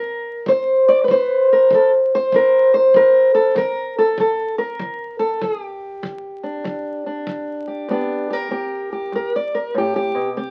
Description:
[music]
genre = acoustic country blues, solo or duo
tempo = 97 BPM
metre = 4/4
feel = swing 64% on 8ths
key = unclear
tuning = A4 = 443 Hz
[part]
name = fingerpicked old ladder-braced acoustic guitar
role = melody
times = 0.0-10.5 s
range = G2 to D5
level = -18 LUFS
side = equal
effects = none
[part]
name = kick drum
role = drums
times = 0.5-7.5 s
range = none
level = -36 LUFS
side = equal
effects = none
[sound]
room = moderate studio ambience, RT60 0.4 s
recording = very old 78 rpm record, vinyl crackle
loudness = -18 LUFS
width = mono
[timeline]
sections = 0.0-7.9 A section; 7.9-10.5 B section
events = steel-string acoustic guitar solo 7.9-10.5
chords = 0.0 D5; 5.4 G5; 7.9 G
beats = | 0.46 1.08 1.70 2.32 | 2.94 3.55 4.17 4.79 | 5.41 6.03 6.64 7.26 | 7.88 8.50 9.12 9.74 | 10.35

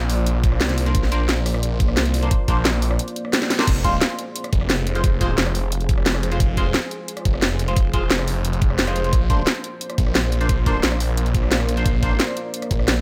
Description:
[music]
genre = dark technical drum and bass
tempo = 176 BPM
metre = 4/4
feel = straight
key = F dorian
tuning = A4 = 440 Hz
[part]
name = deep dark ambient pad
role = sustained chords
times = 0.0-13.0 s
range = Bb3 to D5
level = -32 LUFS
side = equal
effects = chorus, built-in reverb, sidechain pumping
[part]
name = snarling distorted saw bass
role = bass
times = 0.0-13.0 s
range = F1 to C2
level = -24 LUFS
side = equal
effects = distortion, overdrive
[part]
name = drum and bass drum kit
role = drums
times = 0.1-12.9 s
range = crash cymbal, hi-hat, rim click, snare drum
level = -25 LUFS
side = equal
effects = none
[part]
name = electronic kick drum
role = drums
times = 0.4-12.8 s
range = none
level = -22 LUFS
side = equal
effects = none
[part]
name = band-passed chord stab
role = stabs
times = 0.9-12.1 s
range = Ab3 to C5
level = -30 LUFS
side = equal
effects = phaser, tape echo
[sound]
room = light reverb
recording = none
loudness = -20 LUFS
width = mono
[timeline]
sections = 0.0-3.7 A section; 3.7-13.0 A section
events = drop 0.0-3.7, 3.7-13.0; drum fill 3.4; band accent 3.6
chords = 0.0 Bbadd9; 3.7 Fm; 9.1 Bbadd9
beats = 0.27 0.61 | 0.95 1.29 1.63 1.97 | 2.31 2.65 2.99 3.33 | 3.67 4.01 4.36 4.70 | 5.04 5.38 5.72 6.06 | 6.40 6.74 7.08 7.42 | 7.76 8.11 8.45 8.79 | 9.13 9.47 9.81 10.15 | 10.49 10.83 11.17 11.52 | 11.86 12.20 12.54 12.88

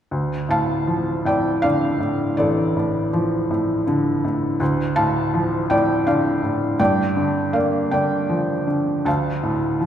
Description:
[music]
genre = classical, lyrical solo piano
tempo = 54 BPM (dotted quarters)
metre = 6/8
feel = rubato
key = D minor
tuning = A4 = 435 Hz
[part]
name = felt-muted upright piano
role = solo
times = 0.1-9.9 s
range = A1 to A5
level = -18 LUFS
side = equal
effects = none
[sound]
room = wet church reverb, RT60 2.6 s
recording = recorded in a church or concert hall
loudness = -18 LUFS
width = side -9 dB against mid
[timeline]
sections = 0.1-9.9 A section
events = none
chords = 0.1 Dm; 4.6 Dmadd11; 6.8 Gm7; 9.1 Dm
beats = | 0.12 1.26 | 2.39 3.51 | 4.61 5.70 | 6.80 7.92 | 9.06

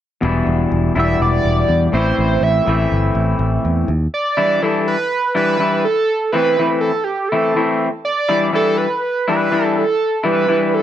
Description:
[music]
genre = rock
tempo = 123 BPM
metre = 4/4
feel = straight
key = E minor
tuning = A4 = 440 Hz
[part]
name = electric guitar through a small old amp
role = riff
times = 0.2-10.8 s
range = E2 to E4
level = -18 LUFS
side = left 2 dB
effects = none
[part]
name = picked electric bass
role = bass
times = 0.2-4.1 s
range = E1 to E2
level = -18 LUFS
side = equal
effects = none
[part]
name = overdriven synth lead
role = melody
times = 1.0-10.8 s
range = G4 to E5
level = -18 LUFS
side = right 3 dB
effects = distortion, chorus, phaser, digital delay
[sound]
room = moderate studio reverb, RT60 0.7 s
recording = none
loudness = -14 LUFS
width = side -11 dB against mid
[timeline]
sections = 0.2-4.1 A section; 4.1-10.8 B section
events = none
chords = 0.2 Em7; 1.9 Am; 4.1 Em7; 5.9 Am; 8.1 Em7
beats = | 0.23 0.71 1.21 1.70 | 2.19 2.67 3.16 3.65 | 4.14 4.63 5.12 5.61 | 6.10 6.59 7.08 7.56 | 8.05 8.54 9.03 9.51 | 10.00 10.48

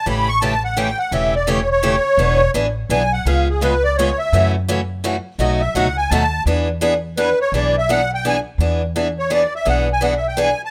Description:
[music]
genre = acoustic string swing (jazz manouche)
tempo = 169 BPM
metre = 3/4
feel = swing 62% on 8ths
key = E mixolydian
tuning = A4 = 439 Hz
[part]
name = musette accordion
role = melody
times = 0.0-10.7 s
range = G#4 to C#6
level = -21 LUFS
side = equal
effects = none
[part]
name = picked steel-string acoustic guitar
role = accompaniment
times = 0.1-10.5 s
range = B2 to G#4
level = -22 LUFS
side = equal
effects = none
[part]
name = upright bass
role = bass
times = 0.1-10.5 s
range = E1 to F#2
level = -24 LUFS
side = equal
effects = none
[sound]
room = moderate small room ambience, RT60 0.5 s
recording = rough home demo mix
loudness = -18 LUFS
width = mono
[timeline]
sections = 0.0-8.6 A section; 8.6-10.7 A section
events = accordion solo 0.0-8.6, 8.6-10.7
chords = 0.1 A7; 2.2 E7; 3.3 C#7; 4.3 F#m7; 5.4 B7; 6.5 E7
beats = | 0.06 0.42 0.77 | 1.13 1.48 1.84 | 2.19 2.55 2.90 | 3.26 3.62 3.97 | 4.33 4.68 5.04 | 5.39 5.75 6.11 | 6.46 6.82 7.17 | 7.53 7.88 8.24 | 8.60 8.95 9.31 | 9.67 10.02 10.38

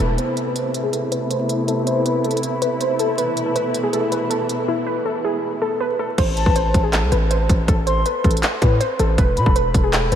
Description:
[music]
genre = hip hop, trap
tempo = 160 BPM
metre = 4/4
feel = half-time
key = A minor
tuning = A4 = 440 Hz
[part]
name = warbly dusty pluck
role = melody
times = 0.0-10.2 s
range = E4 to C5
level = -22 LUFS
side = equal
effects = chorus, low-pass filter, tape echo
[part]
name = dark studio string section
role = sustained chords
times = 0.0-6.2 s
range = A2 to E4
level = -24 LUFS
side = equal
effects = low-pass filter
[part]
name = hard-hitting 808-style bass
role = bass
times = 0.0-0.2, 6.2-10.2 s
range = E1 to B2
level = -20 LUFS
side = equal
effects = none
[part]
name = trap drum kit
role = drums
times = 0.2-10.2 s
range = crash cymbal, handclaps, hi-hat, kick drum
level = -20 LUFS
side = equal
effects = none
[part]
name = mellow silver concert flute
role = second line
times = 6.4-9.5 s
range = A5 to C6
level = -29 LUFS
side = left 3 dB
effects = tape echo
[sound]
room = wet cathedral reverb, RT60 6.2 s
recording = dreamy mix soaked in reverb, vinyl crackle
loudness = -17 LUFS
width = side -9 dB against mid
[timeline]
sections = 0.2-6.2 A section; 6.2-10.2 B section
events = filter sweep 0.2-6.2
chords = 0.2 Amadd9; 3.2 Esus4; 6.2 Am; 9.2 E5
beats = | 0.18 0.56 0.93 1.31 | 1.68 2.06 2.43 2.81 | 3.18 3.56 3.93 4.31 | 4.68 5.06 5.43 5.81 | 6.18 6.56 6.93 7.31 | 7.68 8.06 8.43 8.81 | 9.18 9.56 9.93

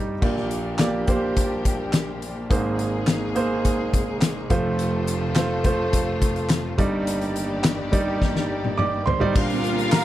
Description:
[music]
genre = piano-driven pop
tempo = 105 BPM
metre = 4/4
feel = straight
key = Bb major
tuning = A4 = 440 Hz
[part]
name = clear grand piano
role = accompaniment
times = 0.0-10.0 s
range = F1 to D6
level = -24 LUFS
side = right 2 dB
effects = none
[part]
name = warm studio string section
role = sustained chords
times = 0.2-10.0 s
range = G2 to D5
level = -31 LUFS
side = left 2 dB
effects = none
[part]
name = loose indie drum kit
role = drums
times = 0.2-10.0 s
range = crash cymbal, handclaps, hi-hat, kick drum, snare drum, toms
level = -23 LUFS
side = left 1 dB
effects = none
[part]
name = warm studio violin section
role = second line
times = 9.4-10.0 s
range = F4 to F5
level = -25 LUFS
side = left 1 dB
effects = none
[part]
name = downlifter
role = sound effects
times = 9.4-10.0 s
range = none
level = -30 LUFS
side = right 5 dB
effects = none
[sound]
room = light reverb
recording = none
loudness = -20 LUFS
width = side -14 dB against mid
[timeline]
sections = 0.2-9.4 A section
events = drum fill 8.2-9.4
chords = 0.2 Bb6; 2.5 Abadd9; 4.5 F; 6.8 Ebmaj7/G; 9.4 Bb6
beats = | 0.22 0.79 1.36 1.94 | 2.51 3.08 3.65 4.22 | 4.79 5.36 5.93 6.50 | 7.07 7.64 8.21 8.79 | 9.36 9.93

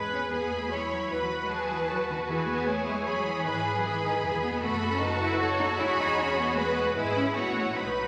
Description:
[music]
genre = quick classical-period movement for string orchestra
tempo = 153 BPM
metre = 3/4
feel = straight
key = E major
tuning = A4 = 440 Hz
[part]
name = rich symphonic violin section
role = melody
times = 0.0-8.1 s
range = E4 to C#5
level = -35 LUFS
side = equal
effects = none
[part]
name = rich symphonic violin section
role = second line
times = 0.0-8.1 s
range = G#4 to B5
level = -34 LUFS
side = equal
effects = none
[part]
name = clear symphonic viola section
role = accompaniment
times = 0.0-8.1 s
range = D#4 to C#5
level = -34 LUFS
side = equal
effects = none
[part]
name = warm symphonic double bass section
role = bass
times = 0.0-8.1 s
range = E1 to E2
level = -41 LUFS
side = equal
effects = none
[part]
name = rich symphonic cello section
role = bass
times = 0.1-8.1 s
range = D#3 to F#4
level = -35 LUFS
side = equal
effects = none
[sound]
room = wet scoring stage reverb, RT60 1.6 s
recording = vinyl crackle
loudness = -28 LUFS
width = mono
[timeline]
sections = 0.0-8.1 A section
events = none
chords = 0.0 E; 1.1 B/D#; 2.3 E; 3.5 E/G#; 4.6 B7/F#; 5.8 E; 7.0 E/G#; 7.4 F#m7/A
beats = 0.32 0.72 | 1.11 1.51 1.90 | 2.29 2.68 3.07 | 3.46 3.84 4.23 | 4.62 5.01 5.40 | 5.79 6.18 6.58 | 6.97 7.36 7.76

